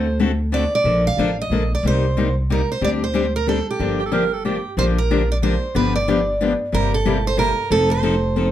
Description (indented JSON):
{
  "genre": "acoustic string swing (jazz manouche)",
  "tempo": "184 BPM",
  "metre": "3/4",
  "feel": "swing 61% on 8ths",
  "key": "G minor, Bb major from 4.8 s",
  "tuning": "A4 = 440 Hz",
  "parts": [
    { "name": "picked steel-string acoustic guitar", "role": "melody", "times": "0.0-8.5 s", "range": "G4 to F5", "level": "-22 LUFS", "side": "right 3 dB", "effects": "plate reverb" },
    { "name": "picked steel-string acoustic guitar", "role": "accompaniment", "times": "0.0-8.5 s", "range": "C3 to A4", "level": "-21 LUFS", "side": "left 4 dB", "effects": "none" },
    { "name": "upright bass", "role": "bass", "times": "0.0-8.5 s", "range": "F1 to D2", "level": "-22 LUFS", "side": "equal", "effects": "none" },
    { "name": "breathy tenor saxophone", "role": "second line", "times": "4.0-4.8 s", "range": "G4 to Bb4", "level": "-24 LUFS", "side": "right 8 dB", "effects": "none" }
  ],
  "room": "moderate club reverb, RT60 0.6 s",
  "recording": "dark, warm production",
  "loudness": "-17 LUFS",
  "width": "side -11 dB against mid",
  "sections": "0.0-4.8 A section; 4.8-8.5 B section",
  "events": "none",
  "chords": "0.0 D7; 0.8 Bbmaj7; 1.8 Cm7; 2.8 D7sus4; 3.8 Gm7; 4.8 Bb6; 5.8 G7; 6.7 C7/G; 7.7 F7"
}